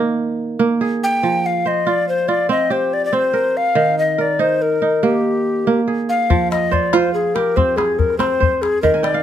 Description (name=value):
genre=west african traditional, West African string and xylophone music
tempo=95 BPM (dotted quarters)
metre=12/8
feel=straight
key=F dorian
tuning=A4 = 440 Hz
part: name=kora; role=arpeggios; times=0.0-9.2 s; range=Eb3 to Ab5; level=-18 LUFS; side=right 5 dB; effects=none
part: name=mellow hollow tenor recorder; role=melody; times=1.0-9.2 s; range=G4 to G5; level=-17 LUFS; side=left 3 dB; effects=none
part: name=calabash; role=percussion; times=6.3-9.1 s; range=none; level=-21 LUFS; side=left 4 dB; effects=none
room=light reverb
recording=close, detailed microphones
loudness=-15 LUFS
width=side -10 dB against mid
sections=0.0-6.3 A section; 6.3-9.2 A section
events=kora fill 8.9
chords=0.0 Eb5; 1.2 Fm; 3.8 Eb; 6.3 Fm